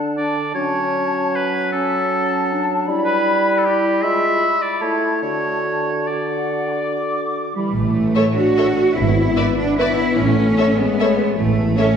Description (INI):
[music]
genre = classical, orchestral ballroom waltz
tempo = 135-168 BPM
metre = 3/4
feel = rubato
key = D major, A major from 7.8 s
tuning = A4 = 440 Hz
[part]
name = clear clarinet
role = second line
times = 0.0-7.5 s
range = C#4 to F#4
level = -25 LUFS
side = left 1 dB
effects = none
[part]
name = flute section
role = second line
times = 0.0-7.8 s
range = F#5 to D6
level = -25 LUFS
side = left 2 dB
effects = none
[part]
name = dark bassoon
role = accompaniment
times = 0.0-7.5 s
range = D3 to A3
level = -22 LUFS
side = right 1 dB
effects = none
[part]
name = bright oboe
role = second line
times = 0.2-7.5 s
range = G4 to E5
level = -22 LUFS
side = equal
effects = none
[part]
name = mellow French horn section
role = sustained chords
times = 7.5-12.0 s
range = E3 to D4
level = -21 LUFS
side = left 3 dB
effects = none
[part]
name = clear symphonic cello section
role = bass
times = 7.5-12.0 s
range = G3 to F#4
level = -18 LUFS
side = right 2 dB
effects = none
[part]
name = rich symphonic double bass section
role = bass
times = 7.7-11.7 s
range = G#1 to A1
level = -21 LUFS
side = right 2 dB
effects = none
[part]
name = rich symphonic violin section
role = melody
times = 8.2-11.9 s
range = E5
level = -30 LUFS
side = left 2 dB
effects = none
[part]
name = rich studio violin section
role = second line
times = 8.2-11.9 s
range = C#5 to D5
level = -25 LUFS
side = left 3 dB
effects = none
[part]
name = warm symphonic viola section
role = accompaniment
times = 8.2-11.9 s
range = A4 to B4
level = -26 LUFS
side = right 2 dB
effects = none
[sound]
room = wet concert hall reverb, RT60 2.3 s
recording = heard from further back in the room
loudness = -16 LUFS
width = side -7 dB against mid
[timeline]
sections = 0.0-7.8 A section; 7.8-12.0 B section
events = none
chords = 0.0 D5; 0.6 F#m; 2.9 Em/G; 4.0 E7b9/G#; 4.8 A; 5.2 D; 7.8 A5; 9.0 E7/G#; 10.2 A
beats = 0.17 | 0.55 0.94 1.35 | 1.73 2.11 2.51 | 2.88 3.26 3.66 | 4.03 4.41 4.82 | 5.23 5.64 6.08 | 6.50 6.92 7.34 | 7.75 8.16 8.58 | 8.97 9.37 9.79 | 10.18 10.57 10.99 | 11.38 11.78